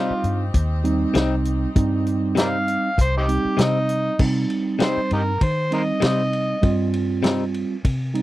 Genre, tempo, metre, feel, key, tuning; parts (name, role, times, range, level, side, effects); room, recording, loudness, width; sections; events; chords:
straight-eighth soul blues; 98 BPM; 4/4; swing 54% on 16ths; C minor; A4 = 440 Hz
overdriven harmonica; melody; 0.0-6.9 s; C4 to F5; -24 LUFS; equal
mellow tine electric piano; accompaniment; 0.0-8.2 s; G3 to F4; -23 LUFS; right 4 dB
clear horn section; sustained chords; 0.0-4.2 s; C4 to G4; -37 LUFS; left 2 dB
direct-recorded clean electric guitar; stabs; 0.0-7.4 s; C3 to Eb4; -24 LUFS; left 6 dB
vintage muted fingered electric bass; bass; 0.1-8.2 s; C2 to Eb3; -24 LUFS; left 1 dB
warm soul drum kit; drums; 0.2-8.2 s; crash cymbal, hi-hat, kick drum, ride cymbal, snare drum; -22 LUFS; left 1 dB
light reverb; dry, close 1970s-style studio recording; -18 LUFS; side -16 dB against mid
0.0-4.2 A section; 4.2-8.2 A section
harmonica solo 0.0-4.2, 4.2-8.2
0.0 Cm